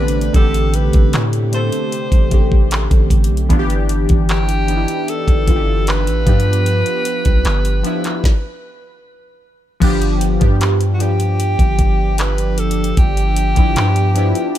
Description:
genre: contemporary R&B.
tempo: 76 BPM.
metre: 4/4.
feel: straight.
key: unclear.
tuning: A4 = 440 Hz.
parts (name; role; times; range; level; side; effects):
bright alto saxophone; melody; 0.0-14.6 s; F#4 to C5; -22 LUFS; equal; ping-pong delay.
warm analog keys; accompaniment; 0.0-14.6 s; D3 to A4; -21 LUFS; left 2 dB; chorus, phaser.
warm analog pad; sustained chords; 0.0-14.6 s; C3 to G4; -25 LUFS; right 3 dB; chorus.
long sustained 808-style bass; bass; 0.0-14.3 s; G1 to A2; -17 LUFS; equal; none.
smooth R&B drum kit; drums; 0.1-14.6 s; crash cymbal, handclaps, hi-hat, kick drum, snare drum; -16 LUFS; equal; none.
room: little or no reverb.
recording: none.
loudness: -13 LUFS.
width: side -12 dB against mid.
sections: 0.0-9.8 A section; 9.8-14.6 B section.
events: stop 8.2-9.8.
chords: 0.0 Am11; 3.5 Em7/G; 6.3 G7; 9.0 N.C.; 9.8 G7.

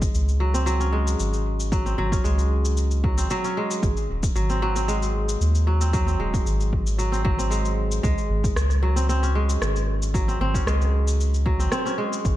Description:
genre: organic downtempo.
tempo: 114 BPM.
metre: 4/4.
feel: straight.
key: unclear.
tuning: A4 = 440 Hz.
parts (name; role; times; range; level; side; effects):
kora; arpeggios; 0.0-12.4 s; F#3 to C#4; -26 LUFS; equal; ping-pong delay.
round analog bass; bass; 0.0-12.4 s; D#1 to D#2; -22 LUFS; equal; sidechain pumping.
electronic kick drum; drums; 0.0-12.4 s; none; -25 LUFS; equal; overdrive.
electronic shaker and rim click; drums; 0.0-12.4 s; none; -33 LUFS; left 1 dB; none.
room: light reverb.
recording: dark, warm production.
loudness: -20 LUFS.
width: side -14 dB against mid.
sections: 0.0-12.4 A section.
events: none.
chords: 0.0 C#5; 3.8 G#7; 8.0 C#5.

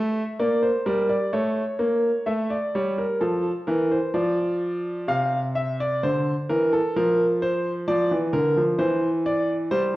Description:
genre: classical, baroque-style two-part invention for grand piano.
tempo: 64 BPM.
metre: 4/4.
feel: straight.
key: F major from 5.1 s.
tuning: A4 = 440 Hz.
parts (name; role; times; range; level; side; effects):
clear concert grand piano; solo; 0.0-10.0 s; C3 to F5; -21 LUFS; equal; none.
room: wet recital hall reverb, RT60 1.2 s.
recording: worn, warbling old tape, cassette tape, warbly pitch drift.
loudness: -21 LUFS.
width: side -17 dB against mid.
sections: 0.0-5.1 A section; 5.1-10.0 B section.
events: none.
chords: 0.0 Gm; 1.3 A7; 3.2 Dm; 5.1 F/C; 7.0 Bb/F; 8.8 C/E.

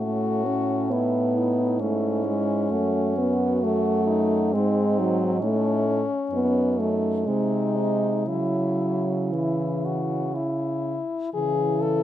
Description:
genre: classical, lyrical piece for horn quartet.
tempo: 56-68 BPM.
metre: 3/4.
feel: rubato.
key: C# minor.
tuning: A4 = 440 Hz.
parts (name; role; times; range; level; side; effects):
clear French horn; melody; 0.0-12.0 s; B#3 to A4; -28 LUFS; left 5 dB; none.
mellow French horn; second line; 0.0-12.0 s; B#3 to F#4; -31 LUFS; right 12 dB; none.
dark French horn; accompaniment; 0.0-12.0 s; E3 to C#4; -24 LUFS; equal; none.
warm French horn; bass; 0.0-12.0 s; F#2 to C#3; -29 LUFS; right 2 dB; none.
room: light reverb.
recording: close, detailed microphones.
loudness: -21 LUFS.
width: side -12 dB against mid.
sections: 0.0-11.3 A section.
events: none.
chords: 0.0 A; 2.7 F#madd11; 4.5 G#; 5.4 A; 6.3 D#dim/F#; 7.3 G#/B#; 8.3 C#m.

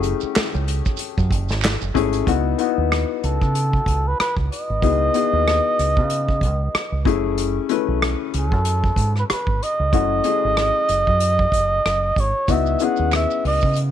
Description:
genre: R&B, neo-soul.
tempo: 94 BPM.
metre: 4/4.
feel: swing 57% on 16ths.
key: F# dorian.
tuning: A4 = 436 Hz.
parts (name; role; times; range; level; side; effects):
trumpet with cup mute; melody; 0.0-13.8 s; A4 to F#5; -21 LUFS; right 2 dB; none.
warm baby grand piano; accompaniment; 0.0-13.9 s; A3 to B4; -24 LUFS; left 13 dB; none.
deep dub fingered electric bass; bass; 0.0-13.9 s; F#1 to C#3; -22 LUFS; right 1 dB; none.
unplugged drum kit; drums; 0.0-13.9 s; handclaps, hi-hat, kick drum, rim click, snare drum; -23 LUFS; right 1 dB; none.
maracas and finger snaps; percussion; 0.0-2.3, 12.5-13.9 s; none; -33 LUFS; right 18 dB; none.
room: little or no reverb.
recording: 1960s-style stereo with parts hard left and right.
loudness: -17 LUFS.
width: side -10 dB against mid.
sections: 0.0-2.3 A section; 2.3-13.9 B section.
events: none.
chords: 0.0 F#m9; 2.3 C#m11; 7.1 F#m9; 12.5 C#m11.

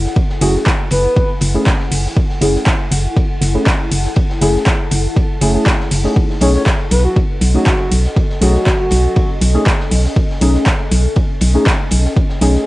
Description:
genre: deep house.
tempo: 120 BPM.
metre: 4/4.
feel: swing 53% on 16ths.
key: F# dorian.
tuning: A4 = 440 Hz.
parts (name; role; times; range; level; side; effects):
organ-like FM bass; bass; 0.0-12.6 s; F#1 to B1; -13 LUFS; equal; sidechain pumping.
granular cloud pad; texture; 0.0-12.7 s; C#4 to A5; -26 LUFS; left 2 dB; built-in reverb, sidechain pumping, cassette tape.
crunchy breakbeat drum kit; drums; 0.1-12.7 s; hi-hat, ride cymbal, snare drum; -31 LUFS; equal; sidechain pumping on cymbals, high-pass filter on cymbals, cassette tape, sidechain pumping on hats, high-pass filter on hats, high-pass filter on snare, high-pass filter on room.
electronic kick drum; drums; 0.2-12.3 s; none; -15 LUFS; equal; overdrive, cassette tape.
breathy flute-like synth lead; melody; 0.4-1.3, 6.4-9.3 s; F#4 to C#5; -19 LUFS; equal; chorus, analog delay.
deep mellow chord stab; stabs; 0.4-12.6 s; A3 to G#4; -19 LUFS; equal; chorus, sidechain pumping, cassette tape, tape echo.
deep house drum kit; drums; 0.4-12.5 s; handclaps, hi-hat; -21 LUFS; equal; overdrive, cassette tape.
room: light reverb.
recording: home recording on cassette, nothing above 10.8 kHz.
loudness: -12 LUFS.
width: side -18 dB against mid.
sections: 0.0-12.7 A section.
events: none.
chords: 0.0 F#m9; 6.2 B13.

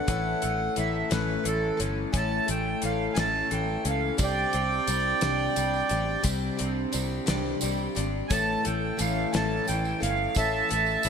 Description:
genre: folk rock and heartland rock.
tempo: 58 BPM (dotted quarters).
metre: 6/8.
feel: straight.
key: unclear.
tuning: A4 = 440 Hz.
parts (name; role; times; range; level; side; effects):
accordion; melody; 0.0-11.1 s; A4 to A5; -28 LUFS; right 3 dB; none.
picked plugged-in twelve-string acoustic guitar; accompaniment; 0.0-11.1 s; A2 to A4; -32 LUFS; left 5 dB; none.
electric guitar through a small old amp; riff; 0.0-11.1 s; A2 to D4; -33 LUFS; left 1 dB; analog chorus.
fingered electric bass; bass; 0.1-11.1 s; G1 to C#2; -31 LUFS; equal; none.
damped 70s drum kit; drums; 0.1-11.1 s; hi-hat, kick drum, snare drum; -31 LUFS; left 1 dB; none.
tambourine; percussion; 4.2-11.1 s; none; -40 LUFS; right 12 dB; none.
room: moderate lush hall reverb, RT60 2.6 s.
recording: bright 1980s-style digital production.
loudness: -24 LUFS.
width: side -7 dB against mid.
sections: 0.0-11.1 A section.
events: accordion solo 0.0-11.1.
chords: 0.1 A; 4.2 Csus2; 8.3 A.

